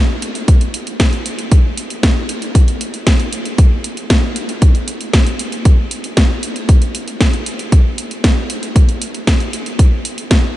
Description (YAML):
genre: italo disco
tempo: 116 BPM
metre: 4/4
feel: straight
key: none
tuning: none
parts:
  - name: house drum kit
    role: drums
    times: 0.2-10.4 s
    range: hi-hat, snare drum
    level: -18 LUFS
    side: equal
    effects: none
  - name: electronic kick drum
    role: drums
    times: 0.5-10.4 s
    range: none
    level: -11 LUFS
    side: equal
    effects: none
room: light reverb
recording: nothing above 11.0 kHz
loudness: -12 LUFS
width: side -15 dB against mid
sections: 0.0-10.6 A section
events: none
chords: none